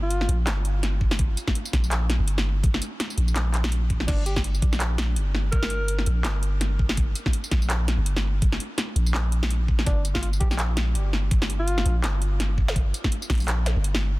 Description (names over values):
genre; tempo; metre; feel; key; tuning
half-time drum and bass; 166 BPM; 4/4; swing 57% on 16ths, half-time; G minor; A4 = 440 Hz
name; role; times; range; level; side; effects
mellow alto saxophone; melody; 0.0-0.4, 4.1-6.0, 9.9-12.0 s; D4 to Bb4; -35 LUFS; equal; digital delay
long sustained 808-style bass; bass; 0.0-14.2 s; G1 to Bb1; -24 LUFS; equal; none
drum and bass drum kit; drums; 0.1-14.0 s; crash cymbal, handclaps, hi-hat, snare drum, tambourine; -28 LUFS; equal; none
electronic kick drum; drums; 1.0-13.4 s; none; -24 LUFS; equal; none
room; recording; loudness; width
digital ambience; dense, heavily limited modern master; -21 LUFS; side -20 dB against mid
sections
0.0-14.2 A section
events
none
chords
0.0 G5